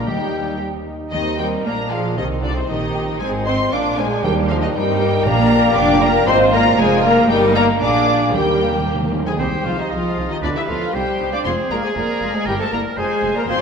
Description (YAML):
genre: quick classical-period movement for symphony orchestra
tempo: 117 BPM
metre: 2/4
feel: straight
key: Eb major, C minor from 9.4 s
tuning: A4 = 440 Hz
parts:
  - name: muted studio violin section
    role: melody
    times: 0.0-13.6 s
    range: C5 to D6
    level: -24 LUFS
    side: left 2 dB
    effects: none
  - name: muted studio violin section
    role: second line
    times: 0.0-13.6 s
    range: Bb3 to D5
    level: -28 LUFS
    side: left 2 dB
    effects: none
  - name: mellow bassoon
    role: accompaniment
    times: 0.0-9.1 s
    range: C4 to G4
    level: -25 LUFS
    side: right 3 dB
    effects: none
  - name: muted studio viola section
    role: accompaniment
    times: 0.0-13.6 s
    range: G3 to D5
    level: -25 LUFS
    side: left 1 dB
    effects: none
  - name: warm French horn section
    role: sustained chords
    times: 0.0-13.5 s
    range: C3 to D4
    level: -23 LUFS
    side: left 4 dB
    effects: none
  - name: muted studio cello section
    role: bass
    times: 0.0-13.5 s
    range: C3 to D4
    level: -24 LUFS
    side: right 3 dB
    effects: none
  - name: muted studio double bass section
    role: bass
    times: 0.0-13.6 s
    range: F1 to G2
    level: -24 LUFS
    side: right 4 dB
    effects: none
  - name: bright oboe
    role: second line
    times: 0.1-0.6, 9.4-13.6 s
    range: G4 to Eb5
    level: -28 LUFS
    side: right 1 dB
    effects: none
  - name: mellow hollow concert flute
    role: second line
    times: 0.1-13.6 s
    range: Eb4 to G5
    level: -25 LUFS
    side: left 1 dB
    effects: none
  - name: timpani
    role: percussion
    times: 0.1-0.8, 4.2-6.0, 8.3-9.3 s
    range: Bb2 to Eb3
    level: -27 LUFS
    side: equal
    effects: none
  - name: dark trumpet section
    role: stabs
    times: 9.3-13.6 s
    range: D4 to D5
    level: -26 LUFS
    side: right 1 dB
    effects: none
room: wet concert hall reverb, RT60 2.4 s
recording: minimal, uncompressed stereo recording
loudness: -15 LUFS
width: side -6 dB against mid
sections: 0.0-1.1 A section; 1.1-9.4 B section; 9.4-13.6 C section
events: timpani fill 8.3-9.4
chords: 0.1 Eb; 1.7 Bb; 2.2 Cm; 3.2 Ab; 3.7 Bb7; 4.2 Eb; 5.3 Bb; 6.3 Bb5/Ab; 7.3 Eb/G; 7.8 Bb7; 8.3 Eb; 9.4 Cm; 10.4 Bdim/D; 10.9 Cm; 11.5 Fm; 12.5 Edim/G; 13.0 Fm